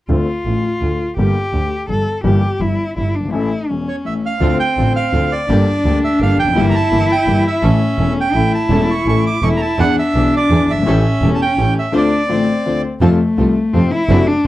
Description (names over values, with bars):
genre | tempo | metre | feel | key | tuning
tango | 167 BPM | 3/4 | rubato | D minor | A4 = 440 Hz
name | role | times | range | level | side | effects
warm cello | second line | 0.1-14.5 s | A3 to A4 | -19 LUFS | left 1 dB | none
warm concert grand piano | accompaniment | 0.1-14.2 s | E1 to A4 | -19 LUFS | left 4 dB | none
clear double bass | bass | 0.1-14.2 s | E1 to F2 | -17 LUFS | right 2 dB | none
bandoneon | melody | 3.9-12.8 s | C#5 to D6 | -19 LUFS | right 4 dB | slapback echo
warm symphonic string section | stabs | 4.4-14.5 s | Bb3 to C5 | -27 LUFS | right 2 dB | none
room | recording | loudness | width
light reverb | dry, close 1970s-style studio recording | -13 LUFS | side -15 dB against mid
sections
0.1-4.4 A section; 4.4-13.0 B section; 13.0-14.5 C section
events
break 3.3-4.4; cello solo 13.0-14.5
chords
0.1 Dm7; 1.2 Gm; 2.3 Edim/G; 3.3 A; 4.4 Dm7; 5.5 Gm; 6.6 Edim/G; 7.6 A; 9.8 E7; 10.9 A7; 11.9 Dm7; 13.0 F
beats
| 0.11 0.47 0.83 | 1.19 1.54 1.90 | 2.25 2.61 2.97 | 3.33 3.69 4.05 | 4.41 4.77 5.13 | 5.49 5.85 6.20 | 6.56 6.92 7.27 | 7.63 7.99 8.35 | 8.71 9.07 9.43 | 9.79 10.15 10.51 | 10.86 11.22 11.57 | 11.93 12.29 12.65 | 13.02 13.38 13.74 | 14.10 14.46